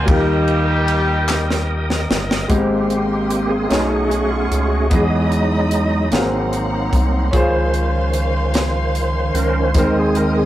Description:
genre	slow gospel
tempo	50 BPM (dotted quarters)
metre	6/8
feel	straight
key	Ab major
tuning	A4 = 440 Hz
part	clear horn section	melody	0.0-2.1 s	G3 to G4	-21 LUFS	equal	none
part	clear concert grand piano	accompaniment	0.0-10.5 s	Ab2 to C5	-22 LUFS	left 1 dB	none
part	bright tonewheel organ	sustained chords	0.0-10.5 s	Eb3 to Eb6	-20 LUFS	right 1 dB	fast rotary speaker, chorus vibrato
part	fingered electric bass with an envelope filter	bass	0.0-10.5 s	G1 to E2	-21 LUFS	equal	none
part	tight funk drum kit	drums	0.1-10.3 s	hi-hat, kick drum, ride cymbal, snare drum	-20 LUFS	equal	none
part	group handclap	percussion	1.3-1.7 s	none	-23 LUFS	left 2 dB	none
part	warm studio string section	sustained chords	2.5-10.5 s	Eb5 to D#6	-29 LUFS	left 1 dB	none
room	moderate small room reverb, RT60 0.6 s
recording	rough rehearsal-room recording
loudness	-15 LUFS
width	side -13 dB against mid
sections	0.0-2.5 A section; 2.5-10.5 B section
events	drum fill 1.3-2.5; tonewheel organ solo 2.5-10.5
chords	0.1 Eb; 2.5 Abmaj7; 3.7 B13; 4.9 Emaj7; 6.1 Ab9; 7.3 Dbmaj7; 9.7 Ab/Eb

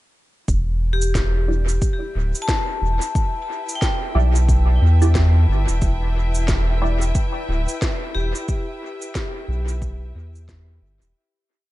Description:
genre	ambient dub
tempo	90 BPM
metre	4/4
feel	swing 60% on 16ths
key	E minor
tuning	A4 = 440 Hz
part	muted studio string section	sustained chords	0.5-11.2 s	E4 to G5	-33 LUFS	left 1 dB	none
part	round analog bass	bass	0.5-11.1 s	D1 to E2	-18 LUFS	equal	tube saturation
part	electronic cabasa and snare drum	drums	0.5-11.1 s	none	-30 LUFS	right 1 dB	dub echo
part	electronic kick drum	drums	0.5-10.6 s	none	-22 LUFS	equal	none
part	vibraphone with hard mallets	arpeggios	0.9-11.2 s	G4 to A5	-29 LUFS	left 3 dB	analog delay
part	filtered dub chord stab	stabs	1.5-9.5 s	E4 to D5	-29 LUFS	right 2 dB	phaser, lush chorus, dub echo
room	little or no reverb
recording	nothing above 11.0 kHz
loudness	-18 LUFS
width	side -17 dB against mid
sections	0.5-11.2 groove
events	fade-in on string section 0.5-11.2; fade-out 7.6-11.2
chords	0.5 Em7

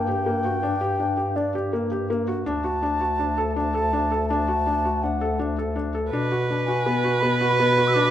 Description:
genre	contemporary instrumental, chamber music in an uneven meter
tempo	164 BPM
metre	5/4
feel	straight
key	unclear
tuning	A4 = 439 Hz
part	baroque flute	melody	0.0-8.1 s	D5 to E6	-26 LUFS	equal	none
part	felt-muted upright piano	arpeggios	0.0-8.1 s	Bb3 to A4	-26 LUFS	left 1 dB	none
part	mellow bass clarinet	bass	0.0-8.1 s	D2 to B2	-27 LUFS	left 1 dB	none
part	dark viola	second line	6.1-8.1 s	B4	-21 LUFS	right 3 dB	none
room	moderate scoring stage reverb, RT60 1.9 s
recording	none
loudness	-21 LUFS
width	side -11 dB against mid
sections	0.0-8.1 A section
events	none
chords	0.0 Gm; 2.5 D; 6.1 Bm

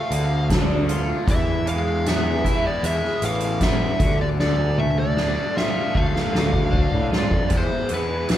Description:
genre	psychedelic rock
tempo	77 BPM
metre	4/4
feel	straight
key	unclear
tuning	A4 = 440 Hz
part	fuzz lead guitar	melody	0.0-8.4 s	B4 to F5	-26 LUFS	equal	distortion
part	overdriven semi-hollow guitar	riff	0.0-8.4 s	D3 to F4	-26 LUFS	equal	phaser
part	tanpura	drone	0.0-8.4 s	E2 to E3	-34 LUFS	equal	none
part	fuzz picked electric bass	bass	0.1-8.4 s	A1 to A2	-24 LUFS	equal	overdrive
part	soft-mallet drum kit	drums	0.1-8.4 s	hi-hat, kick drum, snare drum, toms	-23 LUFS	equal	none
room	light reverb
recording	band playing live in one room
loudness	-19 LUFS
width	side -12 dB against mid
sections	0.0-7.5 A section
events	drum fill 4.4-7.5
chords	0.0 Dm; 1.3 E; 4.0 Dm; 7.5 E

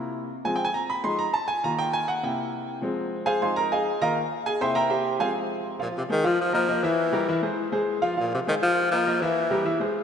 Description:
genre	latin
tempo	202 BPM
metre	4/4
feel	straight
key	F minor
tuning	A4 = 441 Hz
part	clear concert grand piano	accompaniment	0.0-10.0 s	C3 to C6	-24 LUFS	equal	none
part	clear tenor saxophone	melody	5.8-9.8 s	Bb2 to F3	-24 LUFS	left 1 dB	tape echo
room	wet lush hall reverb, RT60 3.3 s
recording	dreamy mix soaked in reverb, nothing above 10.6 kHz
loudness	-23 LUFS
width	side -7 dB against mid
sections	0.0-5.8 A section; 5.8-10.0 B section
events	grand piano solo 0.0-5.8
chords	0.5 Fm; 1.1 Fm7; 1.6 Ebsus2; 2.2 C7; 2.8 Fm; 3.4 Fm7; 4.0 Ebsus2; 4.6 C7; 5.2 Fm; 6.4 Ebsus2; 7.0 C7; 7.6 Fm; 8.8 Ebsus2; 9.4 C7

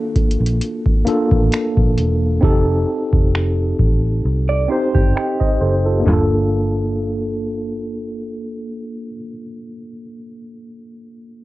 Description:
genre	contemporary R&B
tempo	66 BPM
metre	4/4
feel	swing 54% on 16ths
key	G minor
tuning	A4 = 440 Hz
part	tine electric piano	accompaniment	0.0-11.4 s	Bb3 to G5	-21 LUFS	equal	medium stereo tremolo, cassette tape
part	vintage muted fingered electric bass	bass	0.2-9.2 s	E1 to C2	-19 LUFS	equal	none
part	booming analog drum machine	drums	0.2-6.3 s	finger snaps, handclaps, hi-hat, kick drum, snare drum, toms	-16 LUFS	equal	vintage 12-bit sampler grit, cassette tape
part	direct-recorded clean electric guitar	arpeggios	4.5-6.0 s	G4 to D5	-24 LUFS	right 6 dB	cassette tape, tape echo
room	light reverb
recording	home recording on cassette, low-pass filter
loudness	-15 LUFS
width	side -17 dB against mid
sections	0.0-6.1 A section; 6.1-9.7 B section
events	none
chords	0.0 Gm9 (rootless); 2.4 F9; 6.1 Gm9

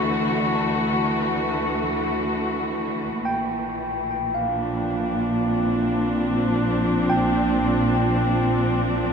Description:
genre	ambient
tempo	free time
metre	none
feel	none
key	Bb lydian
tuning	A4 = 440 Hz
part	muted chamber string section	sustained chords	0.0-9.1 s	Bb2 to F#4	-21 LUFS	equal	none
part	tine electric piano	arpeggios	0.0-9.1 s	D5 to A5	-29 LUFS	left 1 dB	medium tremolo, ping-pong delay
part	dark studio double bass section	bass	0.0-9.1 s	Bb1 to D2	-31 LUFS	right 1 dB	none
room	wet huge ambient reverb, RT60 7.3 s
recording	none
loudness	-20 LUFS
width	side -6 dB against mid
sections	0.0-9.1 A section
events	fade-in on tine electric piano 0.0-9.1; fade-in on double bass section 0.0-9.1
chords	0.0 D7; 3.1 Bb6

